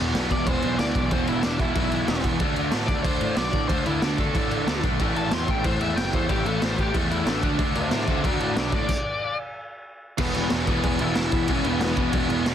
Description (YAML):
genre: punk rock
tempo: 185 BPM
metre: 4/4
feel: straight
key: unclear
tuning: A4 = 439 Hz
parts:
  - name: biting overdriven guitar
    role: riff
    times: 0.0-12.5 s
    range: E2 to D4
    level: -32 LUFS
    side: right 1 dB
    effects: none
  - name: distorted electric guitar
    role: riff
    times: 0.0-12.5 s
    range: E2 to D4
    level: -31 LUFS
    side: left 13 dB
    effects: distortion
  - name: tight distorted guitar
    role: riff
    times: 0.0-12.5 s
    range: E2 to D4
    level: -30 LUFS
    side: right 14 dB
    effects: distortion
  - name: fuzz picked electric bass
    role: bass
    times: 0.0-12.5 s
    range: E1 to A2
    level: -29 LUFS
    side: equal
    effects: overdrive
  - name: raw garage drum kit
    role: drums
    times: 0.1-12.5 s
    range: crash cymbal, kick drum, snare drum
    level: -26 LUFS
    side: equal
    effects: none
  - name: bluesy overdriven lead guitar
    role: melody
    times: 0.3-12.4 s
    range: B3 to C6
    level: -29 LUFS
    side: left 3 dB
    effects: distortion
room: little or no reverb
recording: dense, heavily limited modern master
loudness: -21 LUFS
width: side -9 dB against mid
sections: 0.0-10.2 A section; 10.2-12.5 B section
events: lead electric guitar solo 0.0-10.2; stop 8.9-10.2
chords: 0.0 E5; 2.4 D5; 5.0 A5; 7.4 D5; 10.2 E5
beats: 0.14 0.47 0.79 | 1.11 1.44 1.76 2.08 | 2.41 2.73 3.05 3.38 | 3.70 4.03 4.35 4.67 | 5.00 5.32 5.64 5.97 | 6.29 6.62 6.94 7.26 | 7.59 7.91 8.24 8.56 | 8.89 9.21 9.54 9.86 | 10.19 10.51 10.83 11.16 | 11.48 11.80 12.13 12.45